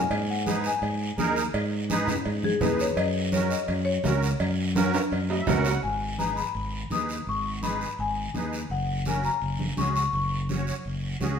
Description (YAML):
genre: latin, cumbia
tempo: 168 BPM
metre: 4/4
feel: straight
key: G# minor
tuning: A4 = 440 Hz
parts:
  - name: marimba with medium hard mallets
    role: melody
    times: 0.0-11.4 s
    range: G#4 to D#6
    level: -29 LUFS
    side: left 5 dB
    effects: none
  - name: fingered electric bass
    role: bass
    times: 0.0-11.4 s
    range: F#1 to G#2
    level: -28 LUFS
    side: equal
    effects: none
  - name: cowbell and timbales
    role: percussion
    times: 0.1-5.7 s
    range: none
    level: -32 LUFS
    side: right 3 dB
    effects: none
  - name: guiro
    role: percussion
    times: 0.1-11.4 s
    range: none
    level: -38 LUFS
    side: right 3 dB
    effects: none
  - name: musette accordion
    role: accompaniment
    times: 0.5-11.4 s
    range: C#4 to F#5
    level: -31 LUFS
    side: right 4 dB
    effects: none
  - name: congas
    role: percussion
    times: 0.5-11.4 s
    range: none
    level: -32 LUFS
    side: right 1 dB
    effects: none
room: wet stone room reverb, RT60 1.2 s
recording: band playing live in one room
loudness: -24 LUFS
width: side -7 dB against mid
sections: 0.0-5.8 A section; 5.8-11.4 B section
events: marimba solo 0.0-5.8; drum fill 4.8-5.8; accordion fill 5.1-5.8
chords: 0.1 G#m; 3.0 F#; 5.8 G#m; 8.7 F#5